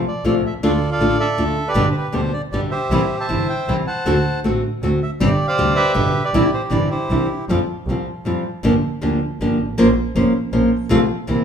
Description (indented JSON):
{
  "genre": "tango",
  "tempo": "158 BPM",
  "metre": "3/4",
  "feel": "rubato",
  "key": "C major",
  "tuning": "A4 = 440 Hz",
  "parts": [
    { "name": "nylon-string guitar", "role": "accompaniment", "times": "0.0-11.4 s", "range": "B2 to C5", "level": "-19 LUFS", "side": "left 1 dB", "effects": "none" },
    { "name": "clear double bass", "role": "bass", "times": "0.0-11.4 s", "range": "F1 to F2", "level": "-23 LUFS", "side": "right 1 dB", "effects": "none" },
    { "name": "bandoneon", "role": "melody", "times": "0.1-7.5 s", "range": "E4 to A5", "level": "-21 LUFS", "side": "right 2 dB", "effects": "none" }
  ],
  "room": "wet large studio reverb, RT60 1.2 s",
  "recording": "minimal, uncompressed stereo recording",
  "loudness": "-16 LUFS",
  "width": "side -7 dB against mid",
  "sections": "0.0-7.5 A section; 7.5-11.4 B section",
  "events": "none",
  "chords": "0.0 F; 0.6 Dm; 1.8 G; 2.9 C; 4.1 D7; 5.2 Gsus4; 6.0 G; 6.3 Cadd9; 7.5 Fsus2; 8.6 Gm7; 9.8 Bbmadd9; 10.9 F/C"
}